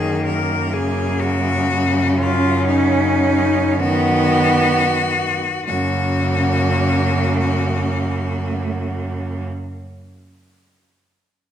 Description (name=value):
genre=classical, lyrical piece for cello ensemble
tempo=30-42 BPM (dotted quarters)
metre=6/8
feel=rubato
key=F# major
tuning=A4 = 440 Hz
part: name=clear cello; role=melody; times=0.0-9.4 s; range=D#4 to A#4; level=-22 LUFS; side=left 5 dB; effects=none
part: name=rich cello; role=second line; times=0.0-9.4 s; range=A#3 to C#4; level=-23 LUFS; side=right 5 dB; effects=none
part: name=clear cello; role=accompaniment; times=0.0-9.4 s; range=C#3 to D#3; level=-22 LUFS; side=left 2 dB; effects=none
part: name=rich cello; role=bass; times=0.0-9.4 s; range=F#2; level=-22 LUFS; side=right 1 dB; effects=none
room=wet recital hall reverb, RT60 1.7 s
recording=none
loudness=-16 LUFS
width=side -10 dB against mid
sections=0.0-5.7 A section; 5.7-9.2 B section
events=slowing down 0.0-5.7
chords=0.0 F#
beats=0.74 | 2.17 3.79 | 5.67 7.46